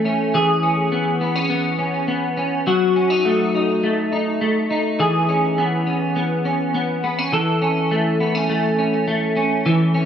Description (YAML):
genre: dream pop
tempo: 103 BPM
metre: 4/4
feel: straight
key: A lydian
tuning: A4 = 440 Hz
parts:
  - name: clean electric guitar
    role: solo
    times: 0.0-10.1 s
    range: E3 to A4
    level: -17 LUFS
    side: equal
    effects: analog chorus, analog delay
room: wet echo chamber reverb, RT60 1.6 s, digital ambience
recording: echo-heavy mix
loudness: -17 LUFS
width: side -8 dB against mid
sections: 0.0-9.7 A section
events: none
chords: 0.3 E6; 2.7 F#m6; 5.0 E6; 7.3 A/E